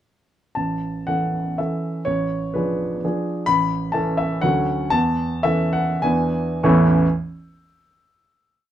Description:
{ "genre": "classical, romantic triple-time dance for piano with dotted rhythms", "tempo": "92-139 BPM", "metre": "3/4", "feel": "rubato", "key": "A major", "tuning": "A4 = 441 Hz", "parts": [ { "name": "warm baby grand piano", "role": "solo", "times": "0.6-7.1 s", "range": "A1 to C#6", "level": "-18 LUFS", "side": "equal", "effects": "none" } ], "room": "light reverb", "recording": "dark, warm production", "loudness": "-19 LUFS", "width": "side -11 dB against mid", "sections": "0.6-6.7 A section; 6.7-8.3 final chord", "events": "slowing down 2.8-6.7", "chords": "0.6 A; 2.1 G#dim7/A; 3.5 A; 4.4 Dmaj7; 4.9 A/E; 6.0 E7; 6.7 A" }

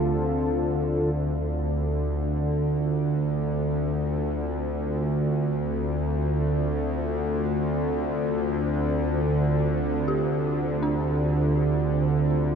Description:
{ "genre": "dark ambient drone", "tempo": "free time", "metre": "none", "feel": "none", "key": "unclear", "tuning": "A4 = 440 Hz", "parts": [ { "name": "dark analog pad", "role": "sustained chords", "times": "0.0-12.6 s", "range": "D3 to A4", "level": "-30 LUFS", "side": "equal", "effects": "chorus" }, { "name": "dark detuned synth bell", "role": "arpeggios", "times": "0.0-12.6 s", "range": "D4 to G4", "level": "-34 LUFS", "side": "left 1 dB", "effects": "chorus, tape echo" }, { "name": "bowed-like drone", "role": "drone", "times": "0.0-12.6 s", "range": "D2 to D3", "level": "-24 LUFS", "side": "equal", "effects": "built-in reverb" } ], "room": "wet cathedral reverb, RT60 6.6 s", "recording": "none", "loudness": "-23 LUFS", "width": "side -6 dB against mid", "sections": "0.0-1.2 A section; 1.2-12.6 B section", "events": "fade-in on analog synth pad 1.2-12.6", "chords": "0.0 Dm" }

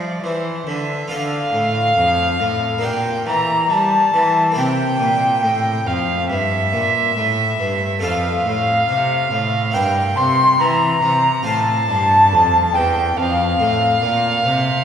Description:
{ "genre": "classical, baroque-style sonata movement with continuo", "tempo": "70 BPM", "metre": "4/4", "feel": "straight", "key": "F major", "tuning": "A4 = 440 Hz", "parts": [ { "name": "baroque flute", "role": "melody", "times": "0.0-14.6 s", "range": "E5 to C6", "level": "-18 LUFS", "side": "left 2 dB", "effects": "none" }, { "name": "rich violin", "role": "second line", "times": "0.0-14.8 s", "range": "C5 to C6", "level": "-21 LUFS", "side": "right 4 dB", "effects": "none" }, { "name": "harpsichord", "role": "accompaniment", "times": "0.0-14.8 s", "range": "E2 to C5", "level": "-25 LUFS", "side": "left 1 dB", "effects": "none" }, { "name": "rich cello", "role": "bass", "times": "0.0-14.8 s", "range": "E2 to G3", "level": "-22 LUFS", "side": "right 1 dB", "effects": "none" } ], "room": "wet church reverb, RT60 2.9 s", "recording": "recorded in a church or concert hall", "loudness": "-15 LUFS", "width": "side -8 dB against mid", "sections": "0.0-1.1 A section; 1.1-14.8 B section", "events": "none", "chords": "0.0 C; 1.1 Dm; 2.8 Gm/Bb; 4.6 C7; 8.0 F; 9.7 Edim/G; 11.5 F" }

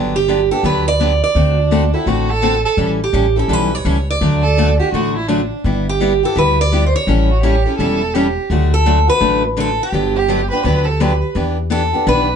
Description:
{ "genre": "acoustic string swing (jazz manouche)", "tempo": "168 BPM", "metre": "4/4", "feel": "swing 62% on 8ths", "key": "G major", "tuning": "A4 = 440 Hz", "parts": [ { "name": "picked steel-string acoustic guitar", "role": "accompaniment", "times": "0.0-12.3 s", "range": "D3 to A4", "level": "-19 LUFS", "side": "left 3 dB", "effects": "none" }, { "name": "upright bass", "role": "bass", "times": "0.0-12.4 s", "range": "E1 to E2", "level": "-17 LUFS", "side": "equal", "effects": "none" }, { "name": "picked steel-string acoustic guitar", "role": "melody", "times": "0.2-12.4 s", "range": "G4 to D5", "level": "-17 LUFS", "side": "right 3 dB", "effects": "none" }, { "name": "warm violin", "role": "second line", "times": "1.6-11.4 s", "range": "D4 to B4", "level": "-20 LUFS", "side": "right 4 dB", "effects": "none" } ], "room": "moderate studio reverb, RT60 0.5 s", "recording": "band playing live in one room, nothing above 10.3 kHz", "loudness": "-13 LUFS", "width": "side -7 dB against mid", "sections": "0.0-11.3 A section; 11.3-12.4 B section", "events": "none", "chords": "0.0 Gmaj7; 1.4 D7; 2.8 A7; 4.2 D; 5.6 G6; 7.1 A7; 8.5 D; 9.9 Gmaj7; 11.3 Em7" }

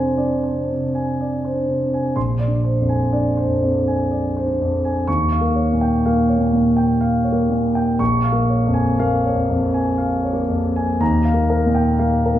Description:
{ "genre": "classical, impressionist solo piano", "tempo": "61 BPM", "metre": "3/4", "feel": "rubato", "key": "unclear", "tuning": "A4 = 441 Hz", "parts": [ { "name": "warm concert grand piano", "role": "solo", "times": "0.0-12.4 s", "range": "Bb1 to Db6", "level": "-16 LUFS", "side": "equal", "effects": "none" } ], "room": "wet recital hall reverb, RT60 1.4 s", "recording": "heard from further back in the room", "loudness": "-16 LUFS", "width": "side -12 dB against mid", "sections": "0.0-12.4 A section", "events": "none", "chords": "0.0 Fm6; 2.2 Bb9; 5.1 Eb9; 8.0 Bbm7; 11.0 Ebadd9" }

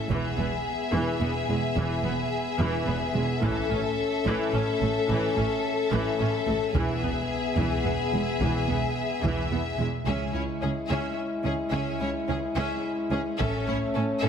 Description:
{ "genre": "cinematic, epic orchestral film score", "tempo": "72 BPM (dotted quarters)", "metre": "6/8", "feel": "straight", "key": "C# minor", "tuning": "A4 = 440 Hz", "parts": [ { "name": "clear symphonic violin section", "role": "melody", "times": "0.0-14.3 s", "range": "G#4 to E5", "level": "-34 LUFS", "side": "left 3 dB", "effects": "none" }, { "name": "rich symphonic violin section", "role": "second line", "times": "0.0-14.3 s", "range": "C#4 to A4", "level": "-34 LUFS", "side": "left 5 dB", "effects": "none" }, { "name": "dark French horn section", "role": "sustained chords", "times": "0.0-14.3 s", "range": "G#3 to A4", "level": "-31 LUFS", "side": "left 4 dB", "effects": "none" }, { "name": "rich symphonic viola section", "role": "accompaniment", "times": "0.1-14.3 s", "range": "E3 to C#4", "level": "-33 LUFS", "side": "right 1 dB", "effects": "none" }, { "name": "clear symphonic double bass section", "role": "bass", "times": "0.1-13.7 s", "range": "E1 to C#2", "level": "-32 LUFS", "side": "right 3 dB", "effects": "none" }, { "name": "rich symphonic cello section", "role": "bass", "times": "0.1-14.3 s", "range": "C#2 to A2", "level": "-32 LUFS", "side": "right 2 dB", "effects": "none" }, { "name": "taiko ensemble", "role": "drums", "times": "0.1-14.3 s", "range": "none", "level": "-35 LUFS", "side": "equal", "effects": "none" }, { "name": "timpani", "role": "percussion", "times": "10.1-10.9 s", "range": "C#3", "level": "-38 LUFS", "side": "equal", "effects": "none" } ], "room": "moderate scoring stage reverb, RT60 1.8 s", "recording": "heavily compressed radio sound, multiband compression", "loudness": "-24 LUFS", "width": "side -7 dB against mid", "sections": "0.0-10.1 A section; 10.1-14.3 B section", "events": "none", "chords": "0.1 E; 3.4 A; 6.8 E; 10.1 C#m; 13.4 A" }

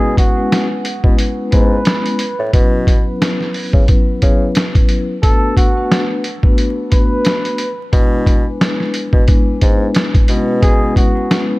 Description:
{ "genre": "hip hop, boom-bap hip-hop", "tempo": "89 BPM", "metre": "4/4", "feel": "swing 56% on 16ths", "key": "B dorian", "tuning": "A4 = 440 Hz", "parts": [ { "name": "trumpet with bucket mute", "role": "melody", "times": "0.0-11.5 s", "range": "F#4 to B4", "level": "-22 LUFS", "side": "right 1 dB", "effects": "high-pass filter, low-pass filter, tape echo" }, { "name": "vibraphone with soft mallets", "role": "accompaniment", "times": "0.0-11.6 s", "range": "F#3 to B4", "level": "-19 LUFS", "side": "left 2 dB", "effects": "high-pass filter, low-pass filter" }, { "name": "warm bassoon", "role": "bass", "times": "0.0-11.1 s", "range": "G#2 to C#3", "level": "-19 LUFS", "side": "equal", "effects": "none" }, { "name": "boom bap sampler-style drum kit", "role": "drums", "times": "0.2-11.5 s", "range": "hi-hat, kick drum, snare drum", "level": "-13 LUFS", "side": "equal", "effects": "none" } ], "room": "studio ambience", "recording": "dark, warm production, vinyl crackle", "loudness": "-12 LUFS", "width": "side -21 dB against mid", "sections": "0.0-11.6 A section", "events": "none", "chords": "0.0 C#m7/B; 2.5 F#7sus4/B; 5.2 Bm7; 7.9 E7/B; 10.3 C#m7/B" }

